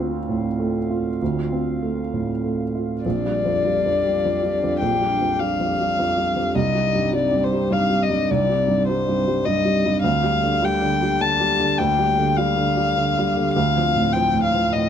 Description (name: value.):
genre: neoclassical piano and strings.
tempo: 102 BPM.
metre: 3/4.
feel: rubato.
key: Bb major.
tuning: A4 = 440 Hz.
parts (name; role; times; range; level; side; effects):
dark grand piano; accompaniment; 0.0-14.9 s; Bb1 to F4; -21 LUFS; right 2 dB; none.
hollow soft pad; sustained chords; 0.0-14.9 s; Bb3 to F5; -30 LUFS; equal; chorus.
dark violin; melody; 3.0-14.9 s; C5 to A5; -21 LUFS; left 4 dB; none.
room: moderate studio reverb, RT60 0.8 s.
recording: none.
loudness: -18 LUFS.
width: side -8 dB against mid.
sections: 0.0-3.0 A section; 3.0-14.9 A section.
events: none.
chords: 0.0 Dm7; 3.0 Bb6; 6.6 Cm; 10.0 Bb6/D; 13.5 Dm7.